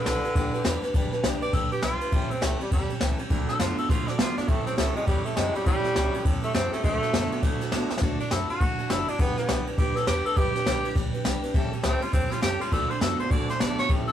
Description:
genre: rockabilly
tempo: 204 BPM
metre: 4/4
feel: swing 62% on 8ths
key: D major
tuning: A4 = 439 Hz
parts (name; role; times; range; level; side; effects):
- clear tenor saxophone; melody; 0.0-14.1 s; D3 to D5; -28 LUFS; equal; none
- picked steel-string acoustic guitar; accompaniment; 0.0-14.1 s; A2 to B4; -32 LUFS; left 1 dB; none
- upright bass; bass; 0.1-14.1 s; F#1 to B2; -32 LUFS; equal; none
- jazz brush drum kit; drums; 0.1-14.1 s; kick drum, ride cymbal, snare drum; -26 LUFS; equal; none
- electric guitar through a small old amp; riff; 3.3-8.0, 12.7-14.1 s; A2 to B3; -33 LUFS; right 4 dB; none
room: moderate small room reverb, RT60 0.5 s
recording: rough rehearsal-room recording, warm saturation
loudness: -23 LUFS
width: side -10 dB against mid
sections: 0.0-8.0 A section; 8.0-14.1 A section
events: tenor saxophone solo 0.0-14.1; drum fill 7.9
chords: 0.0 G; 2.1 A7; 3.3 D; 4.5 A7; 6.8 D; 9.2 G; 11.5 A7; 12.7 D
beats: 0.06 0.36 0.65 | 0.95 1.24 1.54 1.83 | 2.13 2.42 2.72 3.01 | 3.31 3.60 3.90 4.19 | 4.49 4.78 5.07 5.37 | 5.66 5.96 6.25 6.55 | 6.84 7.13 7.43 7.72 | 8.02 8.31 8.61 8.90 | 9.19 9.49 9.78 10.07 | 10.37 10.66 10.96 11.25 | 11.54 11.84 12.13 12.43 | 12.72 13.01 13.31 13.60 | 13.89

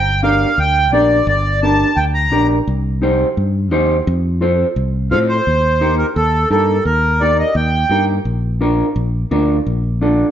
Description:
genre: latin, cumbia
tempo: 172 BPM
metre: 4/4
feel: straight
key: unclear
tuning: A4 = 441 Hz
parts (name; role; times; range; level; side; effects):
- accordion; melody; 0.0-2.5, 5.1-8.0 s; A4 to Bb5; -16 LUFS; right 1 dB; none
- fingered electric bass; bass; 0.0-10.2 s; G1 to A2; -18 LUFS; equal; none
- mellow electric guitar; accompaniment; 0.2-10.3 s; D4 to C5; -18 LUFS; equal; warbly pitch drift
room: moderate large studio reverb, RT60 1.2 s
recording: nothing above 7.9 kHz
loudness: -13 LUFS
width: side -10 dB against mid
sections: 0.0-5.5 A section; 5.5-10.3 B section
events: none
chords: 0.0 Gm; 2.7 Cm; 4.1 F; 5.5 Eb; 8.3 Bb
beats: 0.23 0.58 0.93 | 1.28 1.62 1.97 2.32 | 2.67 3.02 3.37 3.72 | 4.07 4.42 4.77 5.12 | 5.46 5.82 6.16 6.51 | 6.86 7.21 7.56 7.91 | 8.26 8.61 8.96 9.31 | 9.66 10.01

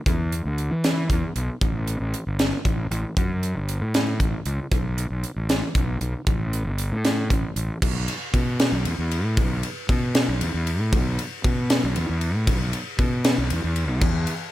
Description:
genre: math rock and midwest emo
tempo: 77 BPM (dotted quarters)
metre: 6/8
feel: straight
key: unclear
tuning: A4 = 438 Hz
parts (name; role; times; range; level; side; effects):
- fuzz fingered electric bass; bass; 0.1-14.3 s; G1 to E3; -24 LUFS; equal; overdrive
- crisp fusion drum kit; drums; 0.1-14.4 s; crash cymbal, hi-hat, kick drum, ride cymbal, snare drum; -23 LUFS; equal; none
room: light reverb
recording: none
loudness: -21 LUFS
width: side -15 dB against mid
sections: 0.0-7.8 A section; 7.8-14.5 B section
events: none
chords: none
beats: | 0.07 0.84 | 1.62 2.40 | 3.17 3.95 | 4.73 5.50 | 6.28 7.05 | 7.83 8.60 | 9.38 10.15 | 10.93 11.70 | 12.47 13.25 | 14.02

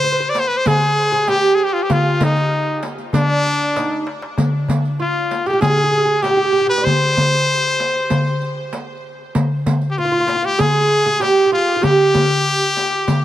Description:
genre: Arabic maqam ensemble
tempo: 97 BPM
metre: 4/4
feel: straight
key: G maqam hijaz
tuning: A4 = 439 Hz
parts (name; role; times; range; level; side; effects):
- brilliant trumpet; melody; 0.0-13.2 s; D4 to D5; -18 LUFS; left 2 dB; none
- oud; second line; 0.0-13.2 s; D4 to D5; -20 LUFS; right 3 dB; none
- riq; percussion; 0.3-13.2 s; none; -25 LUFS; right 2 dB; none
- darbuka; percussion; 0.4-13.2 s; none; -20 LUFS; left 1 dB; none
room: light reverb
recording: none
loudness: -14 LUFS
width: side -13 dB against mid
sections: 0.0-13.2 A section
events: drum fill 3.8-4.4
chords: none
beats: 0.04 0.66 1.28 | 1.90 2.52 3.14 3.76 | 4.38 5.00 5.62 6.24 | 6.86 7.48 8.10 8.72 | 9.35 9.97 10.59 11.21 | 11.83 12.46 13.08

